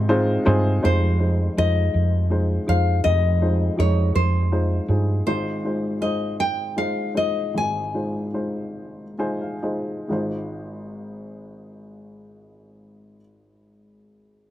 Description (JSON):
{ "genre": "acoustic folk-pop ballad", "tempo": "43-54 BPM (dotted quarters)", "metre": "6/8", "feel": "straight", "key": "Ab major", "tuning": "A4 = 443 Hz", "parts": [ { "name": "nylon-string guitar", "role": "melody", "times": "0.0-9.2 s", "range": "Ab4 to Ab5", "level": "-25 LUFS", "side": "left 2 dB", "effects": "none" }, { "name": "warm upright piano", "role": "accompaniment", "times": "0.0-14.5 s", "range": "F1 to Ab5", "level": "-25 LUFS", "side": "equal", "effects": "none" }, { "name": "woody fretless electric bass", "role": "bass", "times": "0.0-5.2 s", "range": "F2 to Ab2", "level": "-20 LUFS", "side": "right 1 dB", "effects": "wide subtle chorus" } ], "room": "little or no reverb", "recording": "close, detailed microphones", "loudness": "-20 LUFS", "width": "side -13 dB against mid", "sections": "0.8-10.1 A section; 10.1-12.8 B section", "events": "slowing down 5.3-10.1", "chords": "0.0 Ab6; 0.8 Fm7; 5.3 Ab6", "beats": "| 0.83 1.94 | 3.05 4.15 | 5.26 6.37 | 7.53 8.75 | 10.08 11.46" }